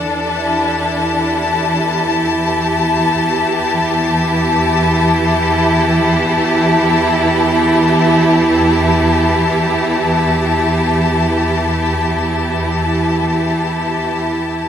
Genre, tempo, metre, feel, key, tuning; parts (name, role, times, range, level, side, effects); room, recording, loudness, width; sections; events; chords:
ambient; free time; A4 = 439 Hz
clear studio string section; sustained chords; 0.0-14.7 s; E3 to A5; -13 LUFS; equal
rich symphonic double bass section; bass; 0.0-14.7 s; E2; -20 LUFS; equal
wet spring reverb, RT60 2.6 s; -12 LUFS; side -9 dB against mid
0.0-14.7 A section
0.0 Em